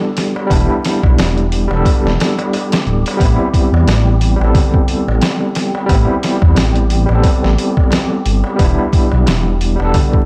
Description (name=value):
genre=trip hop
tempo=89 BPM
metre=4/4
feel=swing 57% on 16ths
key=A minor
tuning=A4 = 442 Hz
part: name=overdriven tine electric piano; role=accompaniment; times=0.0-10.3 s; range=G3 to A4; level=-19 LUFS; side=equal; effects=tremolo, tape echo
part: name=darbuka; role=percussion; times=0.0-10.3 s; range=none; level=-29 LUFS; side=equal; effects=none
part: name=wind-like tuned noise texture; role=texture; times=0.0-10.3 s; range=G4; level=-32 LUFS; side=equal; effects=built-in reverb
part: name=trip hop sampler-style drum kit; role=drums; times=0.2-10.3 s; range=hi-hat, kick drum, snare drum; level=-18 LUFS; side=equal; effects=overdrive
part: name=dark detuned saw bass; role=bass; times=0.5-9.9 s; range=D1 to E2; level=-16 LUFS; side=equal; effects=transformer saturation
room=little or no reverb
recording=dry, gritty hardware recording, vinyl crackle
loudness=-14 LUFS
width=mono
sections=0.0-10.3 A section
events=none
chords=0.0 Em7; 3.2 Am7; 8.6 Em7